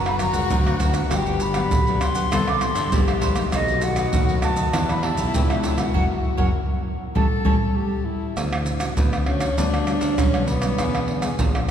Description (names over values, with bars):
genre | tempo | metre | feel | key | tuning
samba and choro | 99 BPM | 4/4 | straight | D major from 8.4 s | A4 = 440 Hz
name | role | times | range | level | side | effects
breathy tenor saxophone | second line | 0.0-11.4 s | B3 to A4 | -27 LUFS | left 3 dB | none
cavaquinho | accompaniment | 0.0-7.6 s | D4 to F#5 | -34 LUFS | right 4 dB | none
nylon-string guitar | accompaniment | 0.0-11.6 s | F#2 to G#4 | -28 LUFS | left 2 dB | none
modern bright picked electric bass | bass | 0.0-11.7 s | F#1 to G2 | -26 LUFS | equal | none
baroque flute | melody | 0.1-7.6 s | D#5 to D6 | -27 LUFS | equal | none
maracas, pandeiro, tamborim and surdo | percussion | 0.1-11.7 s | none | -23 LUFS | right 1 dB | none
room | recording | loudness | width
wet cathedral reverb, RT60 3.9 s | recorded in a church or concert hall | -19 LUFS | side -9 dB against mid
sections
0.0-8.4 A section; 8.4-11.7 B section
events
band accent 5.9-8.4; tenor saxophone solo 8.4-11.7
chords
0.0 F#; 1.1 Gmaj7; 2.3 Cmaj7; 3.5 B7; 4.7 Em7; 5.9 F#; 7.2 A7; 8.4 Dmaj7; 9.6 Gmaj7/D; 10.8 E7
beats
0.51 | 1.11 1.72 2.32 2.92 | 3.53 4.13 4.74 5.34 | 5.95 6.55 7.16 7.76 | 8.37 8.97 9.58 10.19 | 10.79 11.40